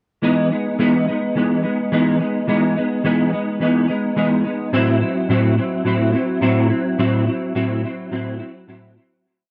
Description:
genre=indie pop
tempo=106 BPM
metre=4/4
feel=straight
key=E major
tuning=A4 = 440 Hz
part: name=semi-hollow electric guitar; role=solo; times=0.2-9.3 s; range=A2 to E4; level=-19 LUFS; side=equal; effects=ensemble chorus, vibrato effect, dub echo
room=light reverb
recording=echo-heavy mix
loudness=-19 LUFS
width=mono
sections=0.2-9.2 A section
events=fade-out 7.0-9.2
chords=0.2 Emaj7; 4.7 Am6

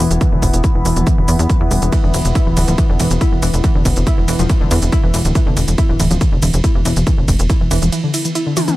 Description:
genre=driving peak-time techno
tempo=140 BPM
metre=4/4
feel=straight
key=unclear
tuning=A4 = 441 Hz
part: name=warbly dusty pluck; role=riff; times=0.0-8.7 s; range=D3 to E4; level=-20 LUFS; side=equal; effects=chorus, sidechain pumping, dub echo
part: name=tight sequencer bass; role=bass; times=0.0-7.9 s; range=D1 to E2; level=-16 LUFS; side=equal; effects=sidechain pumping
part: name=analog drone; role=drone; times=0.0-8.8 s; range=E3 to B3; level=-25 LUFS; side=left 1 dB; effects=chorus, sidechain pumping
part: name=techno drum kit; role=drums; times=0.0-8.8 s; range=hi-hat, ride cymbal, shaker, toms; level=-24 LUFS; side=equal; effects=sidechain pumping on hats, sidechain pumping on cymbals, sidechain pumping on perc, sidechain pumping on toms
part: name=electronic kick drum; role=drums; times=0.2-7.6 s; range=none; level=-16 LUFS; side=equal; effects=none
room=little or no reverb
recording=none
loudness=-12 LUFS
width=side -17 dB against mid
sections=0.0-8.8 A section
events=drop 0.0-8.8; break 7.9-8.8; drum fill 8.6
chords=0.0 E5

